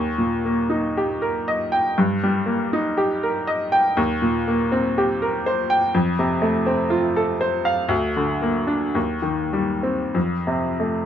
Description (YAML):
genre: classical, romantic nocturne for solo piano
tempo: 47-63 BPM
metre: 4/4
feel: rubato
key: Eb major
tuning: A4 = 439 Hz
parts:
  - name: clear upright piano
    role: solo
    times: 0.0-11.1 s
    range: D2 to G5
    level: -19 LUFS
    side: equal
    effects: none
room: light reverb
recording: none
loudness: -19 LUFS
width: side -9 dB against mid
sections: 0.0-11.1 A section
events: none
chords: 0.0 Eb; 2.0 Eb/G; 4.0 Cm7/Eb; 5.9 F; 7.9 Bb/D; 9.0 Cm/Eb; 10.1 F